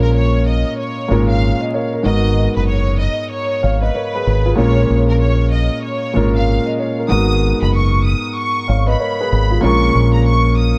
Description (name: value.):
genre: hip hop, boom-bap hip-hop.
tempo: 95 BPM.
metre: 4/4.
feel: swing 61% on 16ths.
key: G# dorian.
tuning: A4 = 440 Hz.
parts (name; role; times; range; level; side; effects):
rich studio violin section; melody; 0.0-10.8 s; A#4 to D#6; -24 LUFS; equal; high-pass filter, low-pass filter, tape echo.
dark grand piano; accompaniment; 0.0-10.8 s; G#2 to E#5; -20 LUFS; equal; cassette tape, high-pass filter, low-pass filter.
deep dub fingered electric bass; bass; 0.0-10.7 s; F#1 to A#1; -17 LUFS; equal; none.
room: light reverb, studio reverb.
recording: vinyl crackle.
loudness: -16 LUFS.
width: mono.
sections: 0.0-7.1 A section; 7.1-10.8 B section.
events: none.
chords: 0.0 A#m7; 2.1 G#m7; 4.6 A#m7; 7.1 G#m7; 9.6 A#m7.